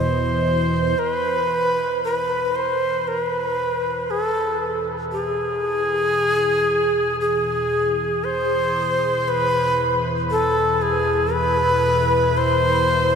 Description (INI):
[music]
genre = dark ambient drone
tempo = 58 BPM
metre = 4/4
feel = straight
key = E major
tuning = A4 = 440 Hz
[part]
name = breathy bright shakuhachi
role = melody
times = 0.0-13.2 s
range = G#4 to C5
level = -19 LUFS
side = equal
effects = ping-pong delay
[part]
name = sweeping resonant pad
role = sustained chords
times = 0.0-13.2 s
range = B2 to D#5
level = -30 LUFS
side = equal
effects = chorus
[part]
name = deep rumbling drone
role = drone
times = 0.0-13.2 s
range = E2 to B2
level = -28 LUFS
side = equal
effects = built-in reverb
[part]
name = backwards swelling texture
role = texture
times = 0.0-1.0 s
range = none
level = barely audible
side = none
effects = none
[sound]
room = wet huge ambient reverb, RT60 8.2 s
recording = none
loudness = -18 LUFS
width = side -6 dB against mid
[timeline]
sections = 1.0-13.2 A section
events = fade-in on synth drone 1.0-13.2; fade-in on analog synth pad 1.0-13.2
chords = 0.0 E5; 1.0 E